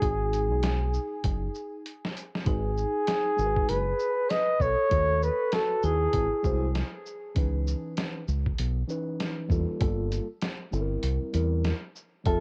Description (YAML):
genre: hip hop, jazz-hop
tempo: 98 BPM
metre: 4/4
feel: swing 60% on 16ths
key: unclear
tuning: A4 = 440 Hz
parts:
  - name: breathy flugelhorn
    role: melody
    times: 0.0-6.8, 12.3-12.4 s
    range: G#4 to D#5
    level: -30 LUFS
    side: equal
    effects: cassette tape, tape echo
  - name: vibraphone with hard mallets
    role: second line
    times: 0.0-6.8, 12.3-12.4 s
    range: D#4 to B4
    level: -38 LUFS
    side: equal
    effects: none
  - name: mellow tine electric piano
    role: accompaniment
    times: 0.0-12.4 s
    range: E3 to E5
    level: -37 LUFS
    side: equal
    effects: none
  - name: deep dub fingered electric bass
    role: bass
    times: 0.0-12.4 s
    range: F1 to E2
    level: -30 LUFS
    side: equal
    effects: none
  - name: lo-fi sampler-style drum kit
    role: drums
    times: 0.0-12.4 s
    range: hi-hat, kick drum, shaker, snare drum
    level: -33 LUFS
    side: equal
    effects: cassette tape
room: little or no reverb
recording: home recording on cassette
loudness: -28 LUFS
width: mono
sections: 0.0-2.5 A section; 2.5-12.4 B section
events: drum fill 1.2-2.5; kick muted 11.0-12.3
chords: 0.0 G#m7; 4.9 D#m7b5; 6.1 G#7b13; 7.4 C#m9; 9.8 Gm9; 11.0 C7